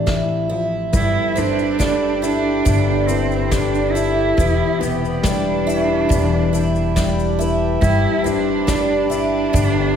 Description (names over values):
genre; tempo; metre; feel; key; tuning
acoustic folk duo or small band; 70 BPM; 4/4; straight; unclear; A4 = 440 Hz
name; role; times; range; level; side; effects
fingerpicked old ladder-braced acoustic guitar; accompaniment; 0.0-10.0 s; A2 to D5; -22 LUFS; left 7 dB; none
picked twelve-string acoustic guitar; arpeggios; 0.0-10.0 s; C3 to E4; -22 LUFS; right 3 dB; none
upright bass; bass; 0.0-10.0 s; E1 to A1; -23 LUFS; equal; none
soft brush drum kit; drums; 0.1-9.7 s; kick drum, snare drum; -22 LUFS; equal; none
hand-pumped harmonium; sustained chords; 0.9-10.0 s; E4 to B5; -28 LUFS; left 3 dB; none
tube shaker; percussion; 0.9-9.8 s; none; -35 LUFS; left 7 dB; none
rich cello; second line; 1.0-10.0 s; B3 to E4; -22 LUFS; right 5 dB; none
room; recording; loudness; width
wet concert hall reverb, RT60 2.2 s; heard from further back in the room; -16 LUFS; side -8 dB against mid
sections
0.9-10.0 A section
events
cello solo 0.9-10.0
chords
0.0 Am7; 0.9 Gadd9; 4.4 Em7; 7.8 Gadd9